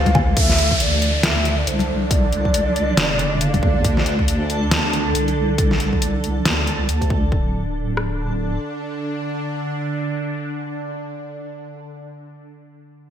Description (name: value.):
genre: deep dubstep.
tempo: 138 BPM.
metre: 4/4.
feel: swing 59% on 16ths, half-time.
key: D minor.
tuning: A4 = 440 Hz.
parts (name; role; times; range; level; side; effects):
breathy mellow long shakuhachi; melody; 0.0-3.8 s; C5 to F5; -25 LUFS; equal; vintage 12-bit sampler grit, dub echo.
bowed-like drone; sustained chords; 0.0-11.6 s; D3 to D4; -26 LUFS; right 1 dB; built-in reverb, phaser.
deep soft wobble bass; bass; 0.0-8.6 s; D1 to D2; -22 LUFS; equal; chorus.
backwards swelling texture; texture; 0.0-7.3 s; A4; -30 LUFS; right 1 dB; built-in reverb, ensemble chorus.
dubstep drum kit; drums; 0.1-8.1 s; kick drum, rim click; -20 LUFS; equal; none.
dubstep drum kit; drums; 0.1-7.1 s; hi-hat, snare drum, woodblock; -22 LUFS; equal; gated reverb.
congas; percussion; 0.1-3.6 s; none; -25 LUFS; left 4 dB; none.
downlifter; sound effects; 0.4-3.8 s; none; -24 LUFS; equal; none.
room: moderate lush hall reverb, RT60 1.9 s, digital ambience.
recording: bright 1980s-style digital production.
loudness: -17 LUFS.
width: side -9 dB against mid.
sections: 0.4-7.3 A section; 7.3-10.8 B section.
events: none.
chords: 0.4 D5; 7.3 N.C..